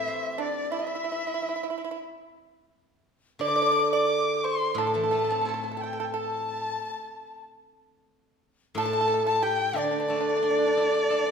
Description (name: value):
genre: chinese traditional, Chinese chamber ensemble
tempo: 90 BPM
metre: 4/4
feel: straight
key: D shang mode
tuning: A4 = 441 Hz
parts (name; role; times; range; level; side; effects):
- dark erhu; melody; 0.0-11.3 s; D5 to D6; -30 LUFS; equal; none
- breathy large dizi; second line; 0.0-11.3 s; D5 to D6; -31 LUFS; left 5 dB; none
- pipa; second line; 0.0-11.3 s; D4 to D5; -31 LUFS; right 6 dB; none
- steel-string zither; accompaniment; 0.0-11.3 s; A2 to C5; -28 LUFS; equal; none
room: wet recital hall reverb, RT60 1.5 s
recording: none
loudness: -24 LUFS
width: side -6 dB against mid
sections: 0.0-11.3 A section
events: none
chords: none